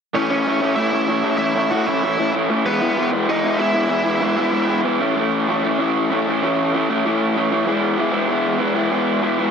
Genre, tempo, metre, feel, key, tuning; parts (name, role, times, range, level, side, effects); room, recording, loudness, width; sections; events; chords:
punk; 192 BPM; 4/4; straight; A4 = 440 Hz
raw garage guitar; riff; 0.1-9.5 s; A2 to E4; -17 LUFS; equal; overdrive
bluesy overdriven lead guitar; melody; 0.2-4.8 s; B3 to F#5; -22 LUFS; right 1 dB; distortion
moderate studio reverb, RT60 0.7 s; heavily compressed radio sound, multiband compression; -17 LUFS; side -6 dB against mid
0.1-5.2 A section; 5.2-9.5 B section
0.1 A; 2.6 E; 5.0 A; 7.7 E